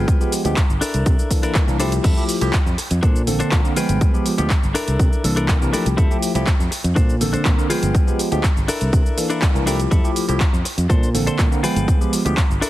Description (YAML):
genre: filtered disco house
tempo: 122 BPM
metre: 4/4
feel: straight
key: F major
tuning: A4 = 443 Hz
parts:
  - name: bell-like tine electric piano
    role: accompaniment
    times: 0.0-12.4 s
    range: D3 to G5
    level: -22 LUFS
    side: equal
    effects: phaser, vintage 12-bit sampler grit, sidechain pumping, low-pass filter
  - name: direct-recorded clean electric guitar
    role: riff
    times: 0.0-12.7 s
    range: D4 to C5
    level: -26 LUFS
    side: left 2 dB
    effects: sidechain pumping, low-pass filter
  - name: fingered electric bass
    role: bass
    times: 0.0-12.7 s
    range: G1 to C3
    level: -21 LUFS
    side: equal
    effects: tube saturation, sidechain pumping, low-pass filter
  - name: electronic kick drum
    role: drums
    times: 0.1-12.5 s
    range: none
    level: -17 LUFS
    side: equal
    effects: overdrive
  - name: house drum kit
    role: drums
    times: 0.1-12.7 s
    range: crash cymbal, handclaps, hi-hat, shaker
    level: -26 LUFS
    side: equal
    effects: overdrive, sidechain pumping on hats, sidechain pumping on perc, sidechain pumping on cymbals
room: little or no reverb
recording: heavily compressed radio sound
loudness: -16 LUFS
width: side -15 dB against mid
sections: 0.0-12.7 A section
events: none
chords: 0.0 G7b9; 0.8 C13; 2.0 Fmaj9; 3.0 Bbmaj9; 3.8 G7b9; 4.8 C13; 6.0 Fmaj9; 7.0 Bbmaj9; 7.7 G7b9; 8.7 C13; 9.9 Fmaj9; 10.9 Bbmaj9; 11.6 G7b9